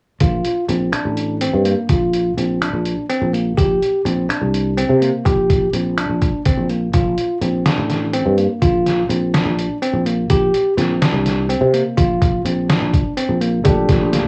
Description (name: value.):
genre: progressive instrumental, band music in an uneven meter.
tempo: 250 BPM (eighths).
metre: 7/8.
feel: straight.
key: Bb major.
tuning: A4 = 439 Hz.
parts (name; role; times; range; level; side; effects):
bell-like tine electric piano; arpeggios; 0.2-14.3 s; Bb3 to G4; -22 LUFS; equal; none.
sustaining fretless electric bass; bass; 0.2-14.3 s; A1 to C3; -21 LUFS; equal; none.
lo-fi sampler-style drum kit; drums; 0.2-14.2 s; finger snaps, hi-hat, kick drum, snare drum; -22 LUFS; equal; vintage 12-bit sampler grit.
warm baby grand piano; accompaniment; 13.6-14.3 s; A3 to G4; -21 LUFS; equal; none.
room: light reverb.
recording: small room ambience.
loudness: -17 LUFS.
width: mono.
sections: 0.2-13.7 A section.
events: kick and snare drop out 13.2-13.7.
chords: 0.2 Bbmaj7; 3.6 Bb69; 6.9 Bbmaj7; 10.3 Bb69; 12.0 Bb; 13.7 Bbmaj7.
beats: | 0.21 0.45 0.69 0.93 1.17 1.41 1.65 | 1.89 2.13 2.37 2.61 2.85 3.09 3.33 | 3.57 3.81 4.05 4.29 4.54 4.78 5.02 | 5.26 5.50 5.74 5.98 6.22 6.46 6.70 | 6.94 7.18 7.42 7.66 7.90 8.14 8.38 | 8.62 8.86 9.10 9.34 9.58 9.82 10.06 | 10.30 10.54 10.78 11.02 11.26 11.50 11.74 | 11.97 12.21 12.46 12.69 12.93 13.17 13.41 | 13.65 13.89 14.13.